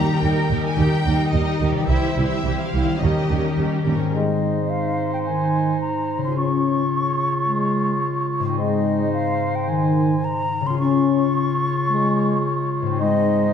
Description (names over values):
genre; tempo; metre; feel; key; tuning
cinematic, heroic adventure film score; 108 BPM; 4/4; straight; Eb major, Ab major from 4.1 s; A4 = 438 Hz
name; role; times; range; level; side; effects
clear symphonic violin section; melody; 0.0-3.6 s; D5 to Bb5; -29 LUFS; left 2 dB; none
warm studio violin section; second line; 0.0-4.1 s; Eb4 to C5; -30 LUFS; left 2 dB; none
rich symphonic viola section; accompaniment; 0.0-4.1 s; G3 to E4; -27 LUFS; right 4 dB; none
concert harp; arpeggios; 0.0-13.5 s; Ab2 to Ab4; -24 LUFS; left 7 dB; none
rich symphonic double bass section; bass; 0.0-3.9 s; C2 to Eb2; -22 LUFS; right 4 dB; none
warm studio cello section; bass; 0.0-3.8 s; Eb4 to Bb4; -28 LUFS; right 3 dB; none
timpani; percussion; 0.0-0.5 s; Eb3; -31 LUFS; equal; none
bright clarinet; second line; 4.1-13.5 s; Eb4 to F4; -29 LUFS; right 3 dB; none
mellow cor anglais; second line; 4.1-13.5 s; C5 to Db5; -27 LUFS; right 4 dB; none
mellow hollow silver concert flute; second line; 4.1-13.5 s; Eb5 to Db6; -25 LUFS; left 1 dB; none
dark French horn section; sustained chords; 4.1-13.5 s; Eb3 to Db4; -23 LUFS; left 1 dB; none
room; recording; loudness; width
wet scoring stage reverb, RT60 1.8 s; dark, warm production; -18 LUFS; side -8 dB against mid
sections
0.0-4.1 A section; 4.1-13.5 B section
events
none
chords
0.0 Eb; 1.9 C; 3.0 Eb7; 4.1 Ab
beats
0.23 0.78 1.34 | 1.89 2.45 3.01 3.57 | 4.13 4.69 5.25 5.80 | 6.36 6.92 7.47 8.03 | 8.58 9.13 9.68 10.24 | 10.79 11.35 11.90 12.45 | 13.00